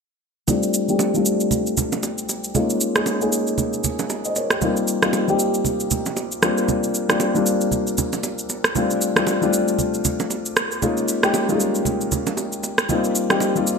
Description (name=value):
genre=amapiano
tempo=116 BPM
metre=4/4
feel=swing 58% on 16ths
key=G minor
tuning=A4 = 440 Hz
part: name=dark concert grand piano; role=accompaniment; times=0.5-13.8 s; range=G3 to Eb5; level=-20 LUFS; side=left 2 dB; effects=low-pass filter
part: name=electronic shaker and rim click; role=drums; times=0.5-13.8 s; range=none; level=-23 LUFS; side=right 2 dB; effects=overdrive, gated reverb
part: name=congas and bongos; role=percussion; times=0.5-13.5 s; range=none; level=-28 LUFS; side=right 6 dB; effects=none
room=moderate plate reverb, RT60 2.0 s, studio reverb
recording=bright 1980s-style digital production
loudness=-18 LUFS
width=side -5 dB against mid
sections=0.5-13.8 A section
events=filter sweep on grand piano 0.5-13.8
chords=0.5 G9sus4; 2.5 Eb9sus4; 4.6 F9sus4; 6.4 C9sus4; 8.8 G9sus4; 10.8 Eb9sus4; 12.9 F9sus4